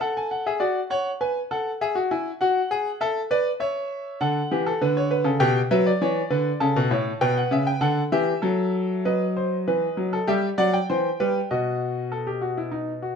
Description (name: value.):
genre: classical, baroque-style 3-part fugue for grand piano.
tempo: 99 BPM.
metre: 4/4.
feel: straight.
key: D major.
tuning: A4 = 440 Hz.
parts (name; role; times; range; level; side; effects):
clear grand piano; solo; 0.0-13.2 s; A2 to A5; -21 LUFS; equal; none.
room: moderate stone room reverb, RT60 1.0 s.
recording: minimal, uncompressed stereo recording.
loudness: -21 LUFS.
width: side -6 dB against mid.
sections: 0.0-9.1 A section; 9.1-13.2 B section.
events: none.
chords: 0.0 A5; 0.6 D/F#; 1.8 E; 3.0 A; 4.2 D; 5.4 G/B; 6.6 A7; 7.8 D; 9.1 B/F#; 10.3 Em; 11.5 B.